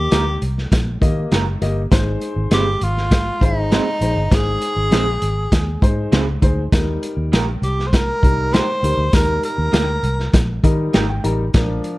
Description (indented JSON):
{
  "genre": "uptempo 1960s-style soul",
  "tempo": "100 BPM",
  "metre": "4/4",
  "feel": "straight",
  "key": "Eb major",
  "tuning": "A4 = 441 Hz",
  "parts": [
    { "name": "breathy tenor saxophone", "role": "melody", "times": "0.0-10.6 s", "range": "Eb4 to C5", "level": "-21 LUFS", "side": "equal", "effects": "none" },
    { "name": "dark upright piano", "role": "accompaniment", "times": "0.0-12.0 s", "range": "F3 to Bb5", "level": "-25 LUFS", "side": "left 2 dB", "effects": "none" },
    { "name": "vintage muted fingered electric bass", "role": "bass", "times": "0.0-11.8 s", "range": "Gb1 to Eb3", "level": "-20 LUFS", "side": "equal", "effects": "none" },
    { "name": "electric guitar through a small old amp", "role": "stabs", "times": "0.1-11.1 s", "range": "Bb3 to C5", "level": "-26 LUFS", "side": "right 6 dB", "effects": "spring reverb" },
    { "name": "crunchy breakbeat drum kit", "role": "drums", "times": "0.1-12.0 s", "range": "hi-hat, kick drum, snare drum", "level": "-17 LUFS", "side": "equal", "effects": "none" }
  ],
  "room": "small room ambience",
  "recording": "dark, warm production, lossy compression artefacts",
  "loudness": "-15 LUFS",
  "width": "side -19 dB against mid",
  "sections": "0.0-12.0 A section",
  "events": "upright piano fill 10.3-11.5",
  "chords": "0.0 Eb; 1.9 Ab; 6.7 Eb",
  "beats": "0.11 0.71 1.31 | 1.92 2.52 3.12 3.72 | 4.32 4.92 5.52 6.12 | 6.72 7.32 7.92 8.53 | 9.13 9.73 10.33 10.94 | 11.54"
}